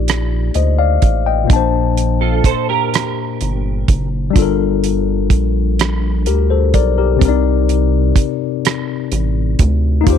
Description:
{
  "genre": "slow six-eight R&B",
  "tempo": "42 BPM (dotted quarters)",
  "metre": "6/8",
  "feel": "straight",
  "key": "unclear",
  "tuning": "A4 = 439 Hz",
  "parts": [
    { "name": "tine electric piano", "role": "accompaniment", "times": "0.0-10.2 s", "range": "Bb2 to A5", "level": "-18 LUFS", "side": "left 13 dB", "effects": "overdrive, medium stereo tremolo" },
    { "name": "rubbery square bass", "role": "bass", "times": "0.0-10.2 s", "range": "F#1 to Eb2", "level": "-16 LUFS", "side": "right 1 dB", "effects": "none" },
    { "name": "damped 70s drum kit", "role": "drums", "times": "0.1-10.2 s", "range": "hi-hat, kick drum, rim click", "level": "-15 LUFS", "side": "right 3 dB", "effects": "none" },
    { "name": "clean electric guitar", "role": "second line", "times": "2.2-4.1 s", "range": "F4 to C5", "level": "-20 LUFS", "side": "right 16 dB", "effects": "ensemble chorus" }
  ],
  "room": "little or no reverb",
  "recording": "1960s-style stereo with parts hard left and right",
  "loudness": "-13 LUFS",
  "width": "side -8 dB against mid",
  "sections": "0.0-10.2 A section",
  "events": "none",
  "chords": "0.0 Ebmaj9; 1.5 Bbmaj7; 4.4 Gm9; 7.2 Cm7"
}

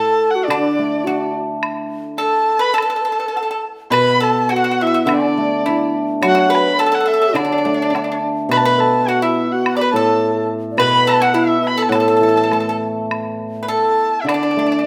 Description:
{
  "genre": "chinese traditional, Chinese chamber ensemble",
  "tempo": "105 BPM",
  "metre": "2/4",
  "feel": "rubato",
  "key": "A zhi mode",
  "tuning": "A4 = 440 Hz",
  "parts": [
    { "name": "dark erhu", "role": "melody", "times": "0.0-14.9 s", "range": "D5 to B5", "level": "-21 LUFS", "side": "equal", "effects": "none" },
    { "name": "mellow xiao", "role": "second line", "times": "0.0-14.9 s", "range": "D4 to D5", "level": "-22 LUFS", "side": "equal", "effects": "none" },
    { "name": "pipa", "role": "second line", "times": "0.0-14.9 s", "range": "D4 to D5", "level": "-24 LUFS", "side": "equal", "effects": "none" },
    { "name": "hammered dulcimer", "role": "accompaniment", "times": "0.5-14.9 s", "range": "A2 to D4", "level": "-23 LUFS", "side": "equal", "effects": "none" },
    { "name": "woodblock", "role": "percussion", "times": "0.5-14.4 s", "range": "none", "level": "-28 LUFS", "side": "equal", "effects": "none" }
  ],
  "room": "wet recital hall reverb, RT60 1.5 s",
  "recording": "none",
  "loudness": "-17 LUFS",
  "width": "mono",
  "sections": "0.0-3.9 A section; 3.9-13.1 B section; 13.1-14.9 A section",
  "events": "none",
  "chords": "none"
}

